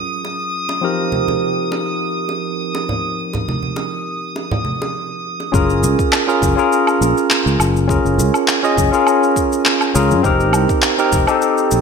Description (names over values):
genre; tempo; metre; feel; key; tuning
sunset chillout; 102 BPM; 4/4; swing 53% on 16ths; unclear; A4 = 439 Hz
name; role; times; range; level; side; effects
barky tine electric piano; accompaniment; 0.0-11.8 s; F3 to Eb5; -17 LUFS; moving between left 4 dB and right 5 dB; overdrive, auto-pan, digital delay
drifting glass-harmonics texture; texture; 0.0-5.6 s; Eb6; -25 LUFS; right 1 dB; chorus, built-in reverb
bongos and congas; percussion; 0.2-5.5 s; none; -25 LUFS; right 1 dB; none
fretless electric bass; bass; 5.5-11.8 s; F1 to Gb2; -17 LUFS; equal; ensemble chorus
electronic kick drum; drums; 5.5-11.2 s; none; -20 LUFS; equal; studio ambience
electronic shaker, handclaps and woodblock; drums; 5.5-11.8 s; none; -19 LUFS; left 1 dB; studio ambience, gated reverb
room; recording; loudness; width
wet lush hall reverb, RT60 1.6 s, digital ambience; bright 1980s-style digital production; -14 LUFS; side -5 dB against mid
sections
0.0-5.5 A section; 5.5-11.8 B section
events
none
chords
0.0 Gbmaj9; 0.8 F7sus4; 5.5 Gbmaj9; 10.2 F7sus4